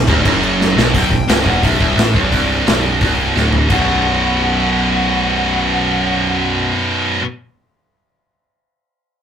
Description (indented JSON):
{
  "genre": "heavy metal",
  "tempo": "174 BPM",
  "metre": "4/4",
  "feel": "straight",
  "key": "B phrygian",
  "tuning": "A4 = 440 Hz",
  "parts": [
    { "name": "heavy high-gain guitar", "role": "riff", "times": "0.0-7.2 s", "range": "B1 to B2", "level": "-19 LUFS", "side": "left 5 dB", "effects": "distortion" },
    { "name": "scooped high-gain guitar", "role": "riff", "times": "0.0-7.2 s", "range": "B1 to B2", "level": "-18 LUFS", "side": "right 6 dB", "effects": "distortion" },
    { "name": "sludgy distorted guitar", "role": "riff", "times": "0.0-0.9 s", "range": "B1 to F#2", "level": "-19 LUFS", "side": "right 2 dB", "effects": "overdrive" },
    { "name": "fuzz picked electric bass", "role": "bass", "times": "0.0-6.7 s", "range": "B0 to A1", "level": "-19 LUFS", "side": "equal", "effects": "overdrive" },
    { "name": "big rock drum kit", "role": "drums", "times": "0.1-3.8 s", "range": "crash cymbal, hi-hat, kick drum, snare drum, toms", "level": "-18 LUFS", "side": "left 1 dB", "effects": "none" },
    { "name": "high-gain lead guitar", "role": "melody", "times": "0.9-6.7 s", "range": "D5 to G5", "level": "-22 LUFS", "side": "left 1 dB", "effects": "distortion" }
  ],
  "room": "moderate small room ambience, RT60 0.5 s",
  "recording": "rough rehearsal-room recording, tube saturation",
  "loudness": "-12 LUFS",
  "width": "side -8 dB against mid",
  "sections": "0.9-3.7 A section; 3.7-6.5 B section",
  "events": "drum fill 0.6-0.9, 3.4-3.7",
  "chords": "0.0 Bm; 3.7 B5",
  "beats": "0.25 0.59 | 0.94 1.28 1.63 1.98 | 2.32 2.67 3.01 3.36 | 3.70 4.05 4.39 4.74 | 5.08 5.43 5.78 6.12"
}